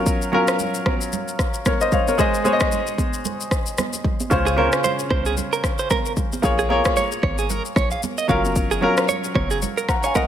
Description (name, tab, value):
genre	afrobeats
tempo	113 BPM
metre	4/4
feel	swing 58% on 16ths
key	unclear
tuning	A4 = 440 Hz
part	clear baby grand piano	accompaniment	0.0-10.3 s	Db3 to Bb5	-22 LUFS	left 1 dB	none
part	afro-pop drum kit	drums	0.1-10.3 s	kick drum, rim click, shaker	-23 LUFS	left 1 dB	none
part	congas	percussion	0.3-10.3 s	none	-30 LUFS	right 6 dB	none
part	short 808-style bass	bass	4.3-9.7 s	Gb1 to Db2	-23 LUFS	equal	none
part	direct-recorded clean electric guitar	riff	4.5-10.3 s	Ab4 to F5	-24 LUFS	right 6 dB	tremolo, ping-pong delay
room	light reverb, digital ambience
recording	none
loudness	-18 LUFS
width	side -10 dB against mid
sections	0.0-10.3 A section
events	none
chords	0.0 Gbmaj7; 2.2 Ab; 4.3 Dbmaj7; 6.4 Bbm7; 8.3 Gbmaj7